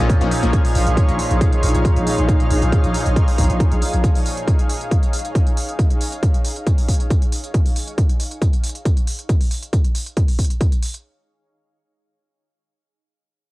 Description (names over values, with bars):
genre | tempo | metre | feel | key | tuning
driving peak-time techno | 137 BPM | 4/4 | straight | Bb minor | A4 = 440 Hz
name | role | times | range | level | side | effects
supersaw stab | stabs | 0.0-0.6 s | F3 to Db4 | -26 LUFS | left 6 dB | sidechain pumping, cassette tape, tape echo
growling 808-style bass | bass | 0.0-4.0 s | Bb1 | -19 LUFS | equal | overdrive, sidechain pumping, low-pass filter
overtone-sweeping drone | drone | 0.0-4.1 s | Bb2 to F3 | -25 LUFS | right 1 dB | chorus, built-in reverb, sidechain pumping, cassette tape
granular cloud pad | texture | 0.0-7.5 s | Eb4 to F5 | -25 LUFS | equal | built-in reverb, sidechain pumping, cassette tape
analog pluck | riff | 0.1-0.5 s | Bb3 to Cb4 | -30 LUFS | right 2 dB | none
electronic hi-hat | drums | 0.1-11.0 s | none | -30 LUFS | right 1 dB | cassette tape
electronic kick drum | drums | 0.1-10.7 s | none | -17 LUFS | equal | cassette tape
room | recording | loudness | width
digital ambience | home recording on cassette | -16 LUFS | side -19 dB against mid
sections
0.0-11.0 A section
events
none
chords
0.0 Bbm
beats
0.10 | 0.53 0.97 1.41 1.85 | 2.29 2.72 3.16 3.60 | 4.04 4.47 4.91 5.35 | 5.79 6.23 6.67 7.10 | 7.54 7.98 8.42 8.86 | 9.29 9.73 10.17 10.61